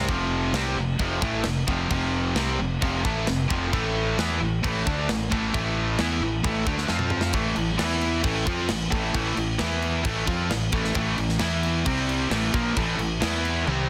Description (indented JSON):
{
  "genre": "heavy metal",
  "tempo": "133 BPM",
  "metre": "4/4",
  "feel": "straight",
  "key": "A minor",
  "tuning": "A4 = 441 Hz",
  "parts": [
    { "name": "overdriven electric guitar", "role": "riff", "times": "0.0-13.9 s", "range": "F2 to F4", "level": "-31 LUFS", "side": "equal", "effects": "none" },
    { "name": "tight distorted guitar", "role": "riff", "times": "0.0-13.9 s", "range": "F2 to F4", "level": "-30 LUFS", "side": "equal", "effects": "distortion" },
    { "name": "fuzz fingered electric bass", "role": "bass", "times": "0.0-13.9 s", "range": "F1 to F2", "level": "-31 LUFS", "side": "equal", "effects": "overdrive" },
    { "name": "tight metal drum kit", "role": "drums", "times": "0.1-13.8 s", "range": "crash cymbal, kick drum, snare drum, toms", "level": "-31 LUFS", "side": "equal", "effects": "soft clipping on kick" }
  ],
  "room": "little or no reverb",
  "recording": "dense, heavily limited modern master",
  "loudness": "-25 LUFS",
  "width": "mono",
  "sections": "0.0-7.3 A section; 7.3-13.9 B section",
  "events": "drum fill 6.9-7.3, 13.7",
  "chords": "0.1 F5; 3.7 A5; 6.9 F5; 7.3 A5; 7.8 E5; 8.2 Am; 9.6 E5; 10.1 Am; 11.4 E5; 11.9 C5; 12.3 A5; 13.2 E5"
}